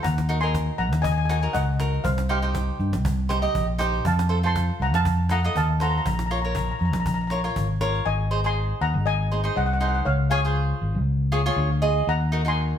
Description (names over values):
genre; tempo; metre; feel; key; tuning
calypso; 120 BPM; 4/4; swing 54% on 16ths; unclear; A4 = 440 Hz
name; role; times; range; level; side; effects
steel pan; melody; 0.0-12.8 s; C5 to C6; -27 LUFS; left 2 dB; none
cavaquinho; accompaniment; 0.0-12.8 s; Eb4 to Eb5; -28 LUFS; right 2 dB; none
fingered electric bass; bass; 0.0-12.7 s; Ab1 to G2; -23 LUFS; equal; none
cajon; drums; 0.0-8.0 s; none; -32 LUFS; equal; none
room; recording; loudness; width
moderate stone room reverb, RT60 1.1 s; band playing live in one room; -21 LUFS; side -9 dB against mid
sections
0.0-8.1 A section; 8.1-12.8 A section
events
none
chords
0.0 Ebm; 2.0 Cm7; 4.0 F; 6.1 Bbm7; 8.1 Ab; 10.1 Db; 12.1 Ebm